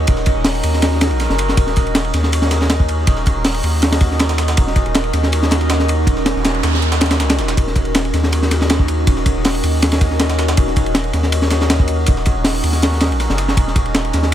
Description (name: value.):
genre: drum and bass, jungle.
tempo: 160 BPM.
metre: 4/4.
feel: straight.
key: Eb minor.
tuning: A4 = 440 Hz.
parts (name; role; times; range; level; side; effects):
warbly tape-like pad; sustained chords; 0.0-14.3 s; Db4 to Eb5; -21 LUFS; equal; chorus, built-in reverb, phaser, vintage 12-bit sampler grit.
soft dub sub bass; bass; 0.0-14.3 s; Eb1 to Eb2; -18 LUFS; equal; none.
breakbeat sampler-style drum kit; drums; 0.1-14.3 s; hi-hat, snare drum; -26 LUFS; right 2 dB; high-pass filter on hats, high-pass filter on snare.
crunchy breakbeat drum kit; drums; 0.1-14.3 s; hi-hat, kick drum, ride cymbal, snare drum; -17 LUFS; equal; none.
noise sweep; sound effects; 6.3-7.6 s; none; -26 LUFS; right 2 dB; none.
room: studio reverb.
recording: none.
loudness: -13 LUFS.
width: side -11 dB against mid.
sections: 0.0-14.3 A section.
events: noise sweep 6.3-7.6.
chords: 0.0 Ebm7.